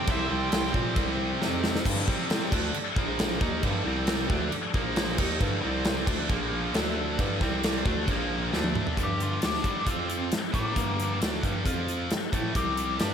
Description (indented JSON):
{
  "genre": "hard rock",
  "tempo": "135 BPM",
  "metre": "4/4",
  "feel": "straight",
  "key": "G dorian",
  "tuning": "A4 = 440 Hz",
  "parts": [
    { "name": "nasal lead guitar with a parked wah", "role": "melody", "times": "0.0-0.7, 9.0-13.1 s", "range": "Bb3 to G5", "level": "-33 LUFS", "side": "left 2 dB", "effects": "overdrive, slapback echo" },
    { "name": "octave-fuzz lead guitar", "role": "second line", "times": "0.0-0.7 s", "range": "C5", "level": "-38 LUFS", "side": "right 4 dB", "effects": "distortion, slapback echo" },
    { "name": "tonewheel organ", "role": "sustained chords", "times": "0.0-9.0 s", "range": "G3 to E5", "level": "-40 LUFS", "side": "left 1 dB", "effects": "none" },
    { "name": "scooped high-gain guitar", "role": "riff", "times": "0.0-13.1 s", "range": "G2 to G4", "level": "-33 LUFS", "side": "left 10 dB", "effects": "distortion, slapback echo" },
    { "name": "tight distorted guitar", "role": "riff", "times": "0.0-13.1 s", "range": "G2 to G4", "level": "-32 LUFS", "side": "right 10 dB", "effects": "distortion, slapback echo" },
    { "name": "dark bass clarinet", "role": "bass", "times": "0.1-13.1 s", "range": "Bb1 to Bb2", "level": "-32 LUFS", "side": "equal", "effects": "none" },
    { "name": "big rock drum kit", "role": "drums", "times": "0.1-13.1 s", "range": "crash cymbal, hi-hat, kick drum, snare drum, toms", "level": "-29 LUFS", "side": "equal", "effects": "none" }
  ],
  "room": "moderate lush hall reverb, RT60 1.9 s, small room ambience",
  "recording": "big arena sound",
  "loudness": "-25 LUFS",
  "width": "side -8 dB against mid",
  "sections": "0.0-1.9 A section; 1.9-9.0 B section; 9.0-13.1 C section",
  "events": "drum fill 1.4-1.9, 8.5-9.0",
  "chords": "0.0 C; 1.9 G5; 2.1 C5; 2.5 G5; 3.0 Bb5; 3.4 Gm; 3.9 C5; 4.3 G5; 4.7 Bb5; 5.2 Gm; 5.6 C5; 6.1 G5; 6.3 Bb5; 6.7 D5; 7.2 G5; 7.4 C5; 7.9 G5; 8.1 Bb5; 8.5 D5; 9.0 G5; 9.9 F5; 10.3 Gm; 11.7 F5; 12.1 Emadd11/G; 12.6 C5",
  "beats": "| 0.08 0.53 0.97 1.41 | 1.86 2.30 2.75 3.19 | 3.64 4.08 4.53 4.97 | 5.41 5.86 6.30 6.75 | 7.19 7.64 8.08 8.53 | 8.97 9.42 9.87 10.31 | 10.76 11.21 11.66 12.11 | 12.55 13.00"
}